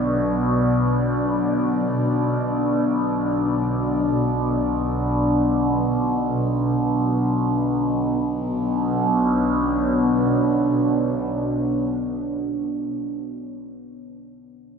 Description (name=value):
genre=dark ambient drone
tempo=free time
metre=none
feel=none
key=B minor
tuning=A4 = 440 Hz
part: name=deep dark ambient pad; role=sustained chords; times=0.0-12.7 s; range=B3 to D5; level=-22 LUFS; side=equal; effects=chorus, built-in reverb
part: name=overtone-sweeping drone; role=drone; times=0.0-12.6 s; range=B1 to B2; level=-23 LUFS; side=right 1 dB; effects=chorus, built-in reverb, phaser
room=wet plate reverb, RT60 3.3 s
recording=none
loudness=-19 LUFS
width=side -6 dB against mid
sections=0.0-7.9 A section; 7.9-12.0 B section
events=none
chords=0.0 Bm; 7.9 Bmadd9